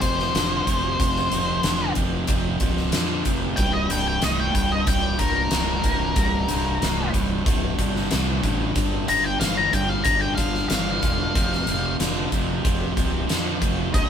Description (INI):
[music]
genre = blues rock power trio and southern rock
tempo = 93 BPM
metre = 4/4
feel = straight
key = unclear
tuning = A4 = 440 Hz
[part]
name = octave-fuzz lead guitar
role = melody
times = 0.0-14.1 s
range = Bb4 to Bb5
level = -24 LUFS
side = left 2 dB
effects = distortion
[part]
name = overdriven electric guitar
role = riff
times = 0.0-14.1 s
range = C2 to E3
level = -26 LUFS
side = equal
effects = none
[part]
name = fuzz fingered electric bass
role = bass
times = 0.0-14.1 s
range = C1 to F2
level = -28 LUFS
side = equal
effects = overdrive
[part]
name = huge arena drum kit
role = drums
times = 0.0-14.1 s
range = hi-hat, kick drum, snare drum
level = -24 LUFS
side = equal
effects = none
[sound]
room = moderate studio reverb, RT60 0.8 s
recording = band playing live in one room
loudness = -20 LUFS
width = side -8 dB against mid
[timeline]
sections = 0.0-14.1 A section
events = none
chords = 0.0 F5; 3.6 C5; 8.8 G5; 11.3 F5